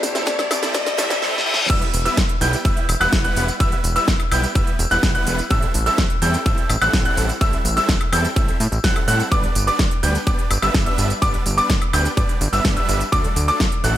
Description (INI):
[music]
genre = EDM, festival progressive house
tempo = 126 BPM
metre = 4/4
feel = straight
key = E minor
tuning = A4 = 442 Hz
[part]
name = picked steel-string acoustic guitar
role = accompaniment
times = 0.0-1.2 s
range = A2 to G4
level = -34 LUFS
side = left 2 dB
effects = none
[part]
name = fat analog bass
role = bass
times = 0.0-14.0 s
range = E1 to A2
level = -23 LUFS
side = equal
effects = sidechain pumping, high-pass filter
[part]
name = big-room dance drum kit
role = drums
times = 0.0-13.9 s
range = crash cymbal, hi-hat, snare drum, tambourine, woodblock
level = -24 LUFS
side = equal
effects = studio reverb
[part]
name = riser and reverse cymbal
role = sound effects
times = 0.0-1.7 s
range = none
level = -24 LUFS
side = left 1 dB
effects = none
[part]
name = supersaw chords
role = riff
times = 0.1-14.0 s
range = F#3 to G5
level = -25 LUFS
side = right 1 dB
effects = sidechain pumping, dub echo
[part]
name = marimba with medium mallets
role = melody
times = 0.3-1.2 s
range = D5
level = -27 LUFS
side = left 5 dB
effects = dub echo
[part]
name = electronic kick drum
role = drums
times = 0.3-13.7 s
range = none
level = -20 LUFS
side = equal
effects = high-pass filter on kick, studio reverb
[part]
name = clear grand piano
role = arpeggios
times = 1.7-14.0 s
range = D6 to G6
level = -22 LUFS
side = equal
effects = sidechain pumping, dub echo
[sound]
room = little or no reverb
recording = high-pass filter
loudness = -16 LUFS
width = side -12 dB against mid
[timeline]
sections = 0.0-1.7 A section; 1.7-14.0 B section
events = build-up 0.0-1.7; drum fill 0.0-1.2, 1.2-1.7; riser 0.0-1.2; filter sweep 0.0-1.7; reverse cymbal 0.7-1.7; drop 1.7-14.0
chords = 0.0 Am7; 1.7 Em; 5.5 Am7; 9.3 G; 13.1 D